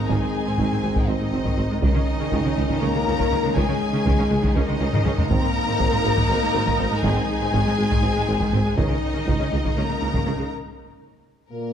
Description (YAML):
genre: cinematic, epic orchestral film score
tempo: 242 BPM (eighths)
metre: 7/8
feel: straight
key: unclear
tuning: A4 = 440 Hz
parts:
  - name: warm symphonic violin section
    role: melody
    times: 0.0-11.7 s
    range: Bb4 to Bb5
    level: -29 LUFS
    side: left 3 dB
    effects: none
  - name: clear symphonic violin section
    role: second line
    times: 0.0-10.5 s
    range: Eb4 to Bb4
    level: -30 LUFS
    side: left 2 dB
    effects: none
  - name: rich symphonic viola section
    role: accompaniment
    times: 0.0-10.5 s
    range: Eb3 to Eb4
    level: -30 LUFS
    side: right 2 dB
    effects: none
  - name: warm French horn section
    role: sustained chords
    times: 0.0-11.7 s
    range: Eb3 to Bb3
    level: -27 LUFS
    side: left 4 dB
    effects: none
  - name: warm trombone section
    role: sustained chords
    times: 0.0-11.7 s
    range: Bb2 to Db4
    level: -30 LUFS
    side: right 4 dB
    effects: none
  - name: clear symphonic cello section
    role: bass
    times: 0.1-10.4 s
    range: Ab2 to Db3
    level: -28 LUFS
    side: right 2 dB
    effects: none
  - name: rich symphonic double bass section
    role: bass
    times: 0.1-10.3 s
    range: Ab1 to Db2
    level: -29 LUFS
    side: right 2 dB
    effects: none
  - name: warm tuba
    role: bass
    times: 0.1-10.3 s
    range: Ab1 to Db2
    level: -30 LUFS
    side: right 3 dB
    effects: none
  - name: taiko ensemble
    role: drums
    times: 0.1-10.5 s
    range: none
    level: -25 LUFS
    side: equal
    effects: none
room: wet scoring stage reverb, RT60 1.7 s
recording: dark, warm production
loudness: -19 LUFS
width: side -8 dB against mid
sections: 0.0-11.7 A section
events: drum fill 4.9-5.3; break 10.5-11.7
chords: 0.0 Ab; 1.8 Dbsus2; 5.3 Ab; 8.8 Dbsus2